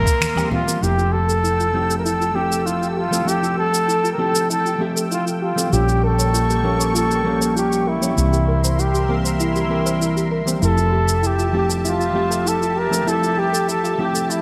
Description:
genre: sunset chillout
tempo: 98 BPM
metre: 4/4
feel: straight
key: F major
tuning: A4 = 440 Hz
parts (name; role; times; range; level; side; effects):
- breathy flugelhorn; melody; 0.0-14.4 s; E4 to Bb4; -24 LUFS; equal; digital delay
- hollow-body jazz guitar; accompaniment; 0.0-14.4 s; E3 to E5; -25 LUFS; equal; digital delay
- lush unison pad; sustained chords; 0.0-14.4 s; Bb3 to E6; -30 LUFS; equal; chorus, phaser
- woody fretless electric bass; bass; 0.0-14.4 s; F1 to C2; -25 LUFS; equal; none
- electronic shaker, finger snaps and woodblock; drums; 0.1-14.4 s; none; -27 LUFS; equal; none
- congas; percussion; 0.2-0.6 s; none; -29 LUFS; equal; none
- soft round pluck; arpeggios; 0.8-14.4 s; E4 to Db5; -30 LUFS; equal; chorus, digital delay
room: moderate lush hall reverb, RT60 2.4 s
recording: none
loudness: -19 LUFS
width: mono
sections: 0.8-14.4 A section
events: break 0.2-0.8; band accent 0.2-0.5; filter sweep on synth arpeggio sound 0.8-14.4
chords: 0.0 C7; 0.8 Fmaj9; 5.7 Bbm6; 8.2 C7; 10.6 Fmaj9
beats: 0.21 | 0.82 1.44 2.05 2.66 | 3.27 3.89 4.50 5.11 | 5.72 6.34 6.95 7.56 | 8.17 8.79 9.40 10.01 | 10.62 11.23 11.85 12.46 | 13.07 13.68 14.29

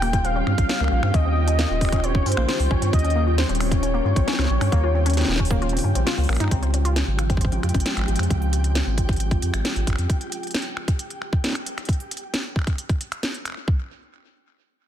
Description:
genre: IDM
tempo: 134 BPM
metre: 4/4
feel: straight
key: Db lydian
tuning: A4 = 440 Hz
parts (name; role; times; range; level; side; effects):
- warm velvety synth lead; melody; 0.0-6.0 s; C5 to G5; -27 LUFS; left 2 dB; chorus, ping-pong delay
- warbly tape-like pad; sustained chords; 0.0-10.1 s; Db3 to F4; -29 LUFS; equal; chorus, built-in reverb, phaser
- warbly dusty pluck; arpeggios; 0.0-8.3 s; Bb3 to C5; -30 LUFS; left 2 dB; chorus, digital delay
- warm sub bass; bass; 0.0-10.1 s; Eb1 to G2; -22 LUFS; equal; tube saturation
- organic electronic drum kit; drums; 0.0-13.6 s; finger snaps, hi-hat, snare drum; -28 LUFS; equal; small room ambience, soft clipping on snare
- flickering grainy texture; texture; 0.0-11.9 s; G4 to G5; -35 LUFS; right 1 dB; built-in reverb
- electronic kick drum; drums; 0.1-13.8 s; none; -21 LUFS; equal; small room ambience
room: light reverb, digital ambience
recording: dense, heavily limited modern master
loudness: -20 LUFS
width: side -10 dB against mid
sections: 0.0-6.5 A section; 6.5-13.7 B section; 13.7-14.9 C section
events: kick drops out 5.6-6.5; filter sweep on synth arpeggio sound 6.5-8.3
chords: 0.0 Eb13; 6.5 Dbmaj7; 13.7 N.C.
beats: 0.24 0.69 | 1.14 1.59 2.04 2.48 | 2.93 3.38 3.83 4.27 | 4.72 5.17 5.62 6.07 | 6.51 6.96 7.41 7.86 | 8.30 8.75 9.20 9.65 | 10.10 10.54 10.99 11.44 | 11.89 12.33 12.78 13.23 | 13.68

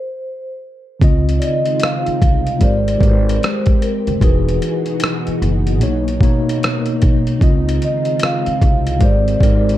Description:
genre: lo-fi hip hop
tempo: 75 BPM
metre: 4/4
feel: swing 64% on 16ths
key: Db lydian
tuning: A4 = 440 Hz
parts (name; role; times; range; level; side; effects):
- vibraphone with soft mallets; melody; 0.0-9.8 s; Bb4 to F5; -22 LUFS; equal; analog delay, plate reverb
- mellow tine electric piano; accompaniment; 1.0-9.8 s; Cb3 to Eb5; -20 LUFS; left 1 dB; fast stereo tremolo
- soft string machine; sustained chords; 1.3-9.8 s; B2 to G#4; -25 LUFS; equal; ensemble chorus
- upright bass; bass; 1.0-9.8 s; E1 to Db2; -18 LUFS; equal; none
- dusty soul sampler-style drum kit; drums; 1.0-9.8 s; hi-hat, kick drum, rim click; -16 LUFS; equal; none
room: light reverb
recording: dark, warm production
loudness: -13 LUFS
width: side -13 dB against mid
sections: 0.0-1.0 A section; 1.0-9.8 B section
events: stop 0.0-1.0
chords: 0.0 N.C.; 1.0 Dbmaj9; 2.6 Abmaj9; 4.2 Emaj9; 5.8 Cbmaj9; 7.4 Dbmaj9; 9.0 Abmaj9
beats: 0.21 | 1.01 1.81 2.62 3.42 | 4.21 5.01 5.82 6.62 | 7.42 8.21 9.02

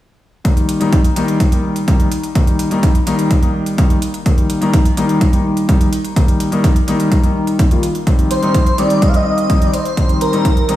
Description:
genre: EDM, festival progressive house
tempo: 126 BPM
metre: 4/4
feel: straight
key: Eb major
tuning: A4 = 439 Hz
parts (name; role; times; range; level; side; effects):
- warm concert grand piano; accompaniment; 0.4-10.8 s; Eb3 to F4; -16 LUFS; left 1 dB; sidechain pumping, diffuse ambient delay
- electronic hi-hat; drums; 0.5-10.8 s; none; -29 LUFS; right 2 dB; none
- electronic kick drum; drums; 0.5-10.5 s; none; -13 LUFS; equal; none
- airy dreamy lead; melody; 8.3-10.8 s; Bb4 to F5; -17 LUFS; equal; chorus, vintage 12-bit sampler grit, diffuse ambient delay
room: moderate lush hall reverb, RT60 1.6 s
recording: dreamy mix soaked in reverb, studio reverb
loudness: -12 LUFS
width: side -14 dB against mid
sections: 0.5-10.8 A section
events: none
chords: 0.5 Eb; 8.1 Cm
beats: | 0.45 0.93 1.40 1.88 | 2.35 2.83 3.31 3.78 | 4.26 4.74 5.21 5.69 | 6.16 6.64 7.12 7.59 | 8.07 8.54 9.02 9.50 | 9.97 10.45

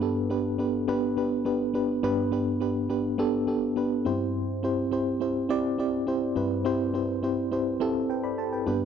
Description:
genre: pop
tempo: 104 BPM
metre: 4/4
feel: straight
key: unclear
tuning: A4 = 440 Hz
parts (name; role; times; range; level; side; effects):
- FM electric piano with auto-pan; solo; 0.0-8.8 s; G2 to B5; -25 LUFS; equal; none
room: light reverb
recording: dry, close 1970s-style studio recording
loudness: -25 LUFS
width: side -8 dB against mid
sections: 0.0-8.8 A section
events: none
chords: 0.0 G; 4.1 C/G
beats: 0.31 0.88 1.46 | 2.04 2.62 3.19 3.77 | 4.34 4.92 5.50 6.08 | 6.65 7.23 7.81 8.38

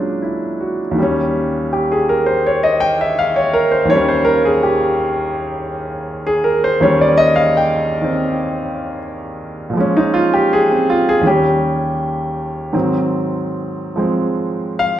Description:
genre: solo jazz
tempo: 81 BPM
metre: 4/4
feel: swing 66% on 8ths, rubato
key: Eb mixolydian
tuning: A4 = 441 Hz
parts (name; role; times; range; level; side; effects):
- warm concert grand piano; solo; 0.0-15.0 s; Eb2 to G5; -14 LUFS; equal; none
room: wet recital hall reverb, RT60 1.4 s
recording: recorded in a church or concert hall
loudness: -14 LUFS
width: side -11 dB against mid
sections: 1.0-15.0 A section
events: grand piano solo 1.0-15.0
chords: 0.0 Bb7alt; 1.0 Eb7; 9.8 Bbm7; 11.2 Eb7; 12.7 Ab7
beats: 0.22 | 0.97 1.71 2.45 3.18 | 3.91 4.64 5.37 6.09 | 6.82 7.55 8.28 9.02 | 9.76 10.50 11.24 11.99 | 12.74 13.49 14.23 14.97

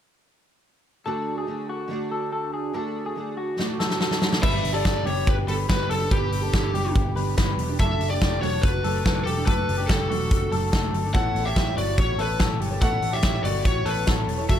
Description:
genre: jangly indie pop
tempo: 143 BPM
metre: 4/4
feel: straight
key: D lydian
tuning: A4 = 442 Hz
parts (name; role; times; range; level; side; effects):
- fingerpicked twelve-string acoustic guitar; accompaniment; 1.1-14.6 s; D3 to C#5; -31 LUFS; right 6 dB; analog chorus
- electric guitar through a small old amp; arpeggios; 1.1-14.6 s; F#4 to B4; -30 LUFS; left 5 dB; spring reverb, digital delay
- big rock drum kit; drums; 3.6-14.6 s; crash cymbal, hi-hat, kick drum, snare drum; -24 LUFS; equal; none
- lead guitar through a small cranked amp; melody; 4.4-14.6 s; G4 to F#5; -28 LUFS; left 2 dB; overdrive, digital delay
- vintage muted picked electric bass; bass; 4.4-14.6 s; E1 to A1; -27 LUFS; equal; tube saturation
room: little or no reverb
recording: none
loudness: -21 LUFS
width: side -10 dB against mid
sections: 1.1-4.4 A section; 4.4-14.6 B section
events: drum fill 3.6-4.4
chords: 1.1 D; 4.4 G; 7.8 D; 11.1 Aadd9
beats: | 1.06 1.48 1.90 2.33 | 2.75 3.17 3.59 4.01 | 4.43 4.85 5.27 5.70 | 6.12 6.54 6.95 7.37 | 7.79 8.21 8.63 9.05 | 9.47 9.89 10.31 10.73 | 11.15 11.57 11.98 12.40 | 12.82 13.24 13.66 14.08 | 14.50

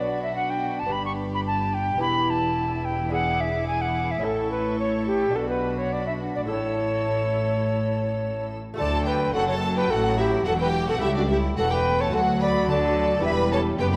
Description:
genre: classical, baroque-style concerto movement with solo episodes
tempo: 108 BPM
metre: 4/4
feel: straight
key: D major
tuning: A4 = 440 Hz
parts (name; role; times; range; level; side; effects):
- mellow alto recorder; melody; 0.0-13.9 s; F#4 to C#6; -28 LUFS; equal; none
- rich chamber violin section; melody; 0.0-14.0 s; D5 to E6; -36 LUFS; equal; none
- clear chamber violin section; second line; 0.0-14.0 s; D4 to B4; -35 LUFS; equal; none
- lute; accompaniment; 0.0-14.0 s; D2 to A4; -36 LUFS; equal; none
- warm chamber viola section; accompaniment; 0.0-14.0 s; F#3 to E4; -35 LUFS; equal; none
- rich chamber cello section; bass; 0.0-14.0 s; C#2 to D3; -33 LUFS; equal; none
- warm chamber double bass section; bass; 0.0-14.0 s; E1 to D2; -33 LUFS; equal; none
room: wet scoring stage reverb, RT60 1.8 s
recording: none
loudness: -24 LUFS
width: mono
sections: 0.0-8.8 A section; 8.8-14.0 B section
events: none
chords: 0.0 Bm; 0.9 G; 2.0 Em; 3.1 E7; 4.2 A; 5.4 Bm; 6.5 A; 8.8 D; 11.0 A7/C#; 12.1 D; 13.2 Em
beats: 0.36 0.92 1.47 | 2.03 2.58 3.14 3.69 | 4.25 4.80 5.36 5.92 | 6.50 7.07 7.64 8.21 | 8.79 9.35 9.90 10.46 | 11.02 11.57 12.13 12.69 | 13.24 13.80

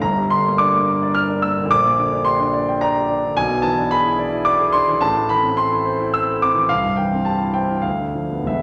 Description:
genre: classical, romantic character piece for solo piano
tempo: 91-112 BPM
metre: 3/4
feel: rubato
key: A minor from 3.4 s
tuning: A4 = 440 Hz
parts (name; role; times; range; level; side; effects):
- warm concert grand piano; solo; 0.0-8.6 s; E1 to F6; -18 LUFS; equal; none
room: wet scoring stage reverb, RT60 1.5 s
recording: none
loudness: -18 LUFS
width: mono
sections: 0.0-8.6 A section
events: none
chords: 0.0 Gm; 1.7 Gm/Bb; 3.4 E7/B; 5.0 Am; 6.7 C; 7.8 Bdim/D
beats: | 0.02 0.59 1.15 | 1.71 2.27 2.83 | 3.39 3.94 4.48 | 5.02 5.57 6.13 | 6.69 7.26 7.84 | 8.48

